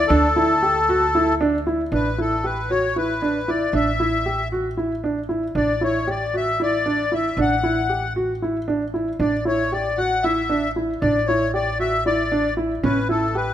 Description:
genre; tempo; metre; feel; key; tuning
contemporary instrumental, chamber music in an uneven meter; 231 BPM (eighths); 7/8; straight; unclear; A4 = 440 Hz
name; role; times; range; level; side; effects
accordion; melody; 0.0-13.5 s; A4 to F#5; -22 LUFS; left 3 dB; light tremolo tuning
upright bass; bass; 0.0-13.5 s; A1 to D2; -28 LUFS; equal; none
dark baby grand piano; arpeggios; 0.1-13.5 s; C#4 to G4; -22 LUFS; right 2 dB; none
room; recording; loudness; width
light reverb; none; -19 LUFS; side -11 dB against mid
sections
0.0-1.9 A section; 1.9-13.5 B section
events
none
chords
0.0 D5; 1.9 D5/A; 12.8 A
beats
| 0.10 0.36 0.62 0.88 1.14 1.40 1.66 | 1.92 2.18 2.44 2.70 2.96 3.22 3.48 | 3.74 4.00 4.26 4.52 4.78 5.04 5.29 | 5.55 5.82 6.08 6.33 6.59 6.85 7.11 | 7.37 7.63 7.89 8.15 8.41 8.67 8.93 | 9.19 9.45 9.71 9.97 10.23 10.49 10.75 | 11.01 11.27 11.53 11.79 12.05 12.31 12.57 | 12.83 13.09 13.35

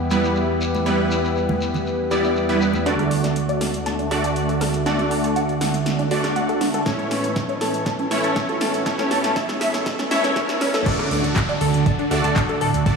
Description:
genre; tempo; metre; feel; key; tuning
progressive house; 120 BPM; 4/4; straight; unclear; A4 = 440 Hz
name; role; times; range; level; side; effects
warm analog pad; sustained chords; 0.0-13.0 s; D2 to A4; -24 LUFS; equal; chorus, sidechain pumping
supersaw stab; stabs; 0.0-13.0 s; G3 to D5; -23 LUFS; right 1 dB; sidechain pumping, low-pass filter, analog delay
congas; percussion; 0.1-2.8 s; none; -31 LUFS; right 2 dB; none
shekere; percussion; 0.1-2.8 s; none; -34 LUFS; left 3 dB; none
swell, riser and downlifter; sound effects; 2.1-13.0 s; none; -34 LUFS; equal; none
tight sequenced synth; arpeggios; 2.9-12.9 s; C#4 to A5; -26 LUFS; left 1 dB; chorus, sidechain pumping, analog delay
deep house drum kit; drums; 2.9-13.0 s; crash cymbal, handclaps, hi-hat, rim click, snare drum; -27 LUFS; left 1 dB; overdrive, low-pass filter on snare, low-pass filter on hats, low-pass filter on cymbals, low-pass filter on room
electronic kick drum; drums; 6.9-13.0 s; none; -24 LUFS; right 1 dB; overdrive
fat analog bass; bass; 11.1-12.8 s; D1 to D2; -22 LUFS; right 4 dB; sidechain pumping
room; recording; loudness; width
wet plate reverb, RT60 2.2 s; dreamy mix soaked in reverb, high-pass filter, studio ambience; -18 LUFS; side -5 dB against mid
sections
0.0-2.9 A section; 2.9-10.9 B section; 10.9-13.0 C section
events
build-up 2.9-10.9; drum fill 2.9-10.9; filter sweep on synth arpeggio sound 2.9-10.9; filter sweep 2.9-10.9; swell 9.9-10.9; drop 10.9-13.0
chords
0.0 Em; 2.9 D; 6.9 A; 10.9 D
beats
0.36 | 0.86 1.36 1.86 2.36 | 2.86 3.36 3.86 4.36 | 4.86 5.36 5.86 6.36 | 6.86 7.36 7.86 8.36 | 8.86 9.36 9.86 10.36 | 10.86 11.36 11.86 12.36 | 12.86

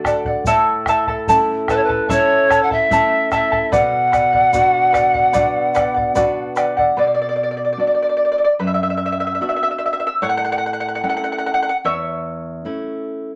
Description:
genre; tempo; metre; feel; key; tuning
andean folk, Andean ensemble; 74 BPM; 4/4; straight; B minor; A4 = 440 Hz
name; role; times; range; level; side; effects
charango; accompaniment; 0.0-13.0 s; E4 to A5; -20 LUFS; equal; none
nylon-string guitar; accompaniment; 0.0-13.3 s; E2 to F#4; -28 LUFS; equal; none
bombo; percussion; 0.0-7.0 s; none; -29 LUFS; equal; none
tube shaker; percussion; 0.1-6.8 s; none; -40 LUFS; equal; none
bright polished pan flute; melody; 1.7-6.5 s; B4 to F#5; -18 LUFS; equal; none
room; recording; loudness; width
moderate club reverb, RT60 0.7 s; none; -17 LUFS; mono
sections
0.0-7.0 A section; 7.0-13.4 B section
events
charango solo 7.0-13.4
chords
0.5 A; 3.7 Bm; 10.2 A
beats
| 0.46 1.28 2.09 2.91 | 3.72 4.54 5.35 6.16 | 6.97 7.79 8.60 9.41 | 10.23 11.04 11.85 12.66

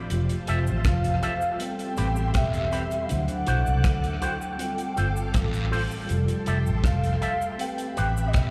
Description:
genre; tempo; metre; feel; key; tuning
lovers rock reggae; 80 BPM; 4/4; straight; unclear; A4 = 440 Hz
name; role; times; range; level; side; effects
string machine, full ensemble; second line; 0.0-8.5 s; F4 to F#6; -39 LUFS; equal; ensemble chorus, dub echo, slapback echo
mellow tine electric piano; accompaniment; 0.0-8.5 s; F3 to C5; -36 LUFS; equal; dub echo
vintage muted fingered electric bass; bass; 0.1-8.5 s; E1 to D2; -27 LUFS; equal; none
damped 70s drum kit; drums; 0.1-8.5 s; hi-hat, kick drum, rim click; -30 LUFS; equal; dub echo
cabasa and guiro; percussion; 0.1-8.5 s; none; -46 LUFS; equal; none
electric guitar with an envelope filter; stabs; 0.5-8.1 s; C4 to E5; -36 LUFS; equal; dub echo, plate reverb, slapback echo
warm velvety synth lead; melody; 0.9-8.5 s; D#5 to G5; -33 LUFS; equal; chorus, tape echo, plate reverb, slapback echo
room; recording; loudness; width
light reverb; live gig heard through the venue's PA, recital hall reverb; -25 LUFS; mono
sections
0.0-8.5 A section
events
none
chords
0.1 Fmaj9; 1.6 Am9; 3.1 D9; 4.6 G9sus4; 6.1 Fmaj9; 7.6 Am9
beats
| 0.10 0.85 1.60 2.35 | 3.10 3.84 4.59 5.34 | 6.09 6.84 7.59 8.34

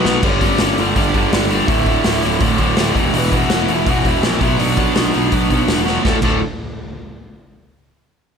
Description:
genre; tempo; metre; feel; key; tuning
punk rock; 164 BPM; 4/4; straight; D major; A4 = 440 Hz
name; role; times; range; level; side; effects
lead guitar through a small cranked amp; melody; 0.0-6.4 s; G3 to G5; -23 LUFS; right 1 dB; overdrive
cranked stack guitar; riff; 0.0-6.4 s; D2 to B3; -20 LUFS; right 10 dB; overdrive
overdriven electric guitar; riff; 0.0-6.4 s; D2 to B3; -20 LUFS; left 9 dB; none
fuzz picked electric bass; bass; 0.1-6.4 s; D1 to B1; -21 LUFS; equal; overdrive
raw garage drum kit; drums; 0.1-6.3 s; crash cymbal, hi-hat, kick drum, snare drum; -19 LUFS; equal; none
room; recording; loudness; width
little or no reverb; none; -13 LUFS; side -6 dB against mid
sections
0.2-6.1 A section; 6.1-7.5 B section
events
drum fill 0.0, 5.9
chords
0.2 G5; 1.7 D5; 3.0 Em; 4.4 Bm; 6.1 D5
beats
| 0.23 0.59 0.95 1.32 | 1.68 2.05 2.41 2.78 | 3.14 3.51 3.87 4.24 | 4.60 4.97 5.33 5.70 | 6.06

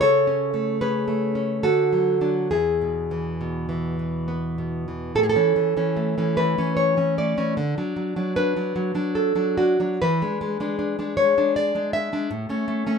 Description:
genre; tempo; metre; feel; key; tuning
romantic piece for solo classical guitar; 65-82 BPM; 3/4; rubato; A major; A4 = 440 Hz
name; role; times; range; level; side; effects
nylon-string guitar; solo; 0.0-13.0 s; E2 to E5; -20 LUFS; equal; none
room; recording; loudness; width
light reverb; minimal, uncompressed stereo recording; -20 LUFS; side -6 dB against mid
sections
0.0-5.2 A section; 5.2-13.0 B section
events
none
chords
0.0 A/C#; 1.6 D; 2.5 E; 5.2 A; 7.6 D; 10.0 E7; 12.3 A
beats
| 0.02 0.81 1.64 | 2.51 3.40 4.27 | 5.15 5.97 6.78 | 7.58 8.36 9.14 | 10.00 10.78 11.54 | 12.30

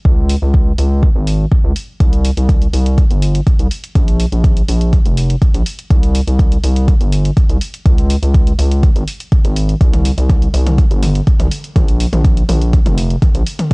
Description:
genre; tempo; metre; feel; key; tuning
melodic techno; 123 BPM; 4/4; straight; unclear; A4 = 439 Hz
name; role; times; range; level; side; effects
gritty driven synth bass; bass; 0.1-13.7 s; F1 to Db2; -14 LUFS; equal; sidechain pumping
electronic kick drum; drums; 0.1-13.7 s; none; -11 LUFS; equal; overdrive, studio reverb
punchy analog drum machine; drums; 0.3-13.7 s; hi-hat, toms; -23 LUFS; equal; studio reverb
room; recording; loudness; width
digital ambience; dry, gritty hardware recording, cassette tape; -11 LUFS; side -34 dB against mid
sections
0.0-13.7 A section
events
none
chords
none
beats
| 0.05 0.54 1.03 1.51 | 2.00 2.49 2.98 3.47 | 3.95 4.44 4.93 5.42 | 5.91 6.39 6.88 7.37 | 7.86 8.34 8.83 9.32 | 9.81 10.29 10.78 11.27 | 11.76 12.25 12.73 13.22 | 13.71

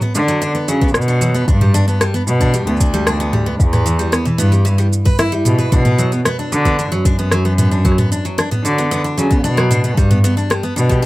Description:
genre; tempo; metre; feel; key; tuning
folktronica; 113 BPM; 4/4; straight; unclear; A4 = 440 Hz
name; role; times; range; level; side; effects
picked steel-string acoustic guitar; arpeggios; 0.0-11.1 s; E3 to B4; -20 LUFS; equal; tape echo
organic electronic drum kit; drums; 0.0-11.0 s; cabasa, rim click, toms; -19 LUFS; equal; none
rich cello; bass; 0.2-11.1 s; D2 to D3; -16 LUFS; equal; none
electronic kick drum; drums; 0.8-11.0 s; none; -15 LUFS; equal; none
room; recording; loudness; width
light reverb; rough home demo mix; -13 LUFS; side -18 dB against mid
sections
0.0-11.1 A section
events
none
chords
0.0 Bm; 1.5 G; 3.6 Em; 5.7 Bm; 10.0 G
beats
0.41 0.94 | 1.47 2.00 2.54 3.07 | 3.60 4.13 4.66 5.19 | 5.72 6.25 6.78 7.32 | 7.85 8.38 8.91 9.44 | 9.97 10.50 11.03

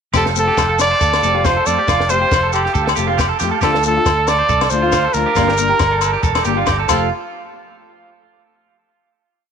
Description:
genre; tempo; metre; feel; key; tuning
highlife guitar band; 138 BPM; 4/4; swing 54% on 16ths; F major; A4 = 440 Hz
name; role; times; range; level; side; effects
nylon-string guitar; accompaniment; 0.1-7.1 s; F3 to G4; -24 LUFS; left 11 dB; none
percussive tonewheel organ; sustained chords; 0.1-7.1 s; A4 to Bb5; -29 LUFS; right 1 dB; slow rotary speaker, chorus vibrato
electric guitar at the edge of break-up; arpeggios; 0.1-7.1 s; F4 to C5; -21 LUFS; right 13 dB; spring reverb
fingered electric bass; bass; 0.1-7.1 s; E1 to F2; -22 LUFS; equal; none
compact cocktail drum kit; drums; 0.1-7.0 s; crash cymbal, kick drum, snare drum; -23 LUFS; equal; none
agogo bells; percussion; 0.1-7.0 s; none; -24 LUFS; left 15 dB; none
shekere; percussion; 0.1-7.1 s; none; -26 LUFS; left 6 dB; none
warm trumpet; melody; 0.2-7.1 s; G4 to D5; -17 LUFS; equal; none
room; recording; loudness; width
light reverb, small room ambience; 1960s-style stereo with parts hard left and right; -13 LUFS; side -7 dB against mid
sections
0.1-7.1 groove; 7.1-8.9 final hit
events
none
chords
0.1 Fadd9; 3.6 Dm; 5.4 Gm; 6.9 Fadd9; 7.1 N.C.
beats
| 0.14 0.57 1.01 1.45 | 1.88 2.32 2.75 3.19 | 3.62 4.06 4.50 4.93 | 5.37 5.80 6.24 6.67

